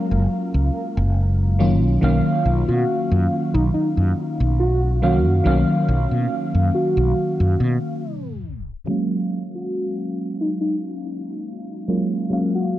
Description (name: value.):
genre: vaporwave.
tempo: 70 BPM.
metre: 4/4.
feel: swing 53% on 16ths.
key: F# major.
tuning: A4 = 437 Hz.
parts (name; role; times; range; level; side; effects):
mellow FM electric piano; accompaniment; 0.0-12.8 s; D#3 to E#5; -22 LUFS; equal; analog chorus, analog delay.
mellow fretless electric bass; bass; 0.1-7.8 s; F#1 to B2; -18 LUFS; equal; tube saturation.
warm velvety synth lead; melody; 2.7-12.8 s; D#4 to F#4; -26 LUFS; equal; chorus, tape echo.
room: light reverb.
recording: cassette tape, low-pass filter, tape stop.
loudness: -18 LUFS.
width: side -14 dB against mid.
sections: 0.0-8.9 A section; 8.9-12.8 B section.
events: tape stop 8.0-8.9; filter sweep 8.9-12.8.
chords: 0.0 F#maj7; 1.6 Bmaj9#11; 8.9 F#maj7.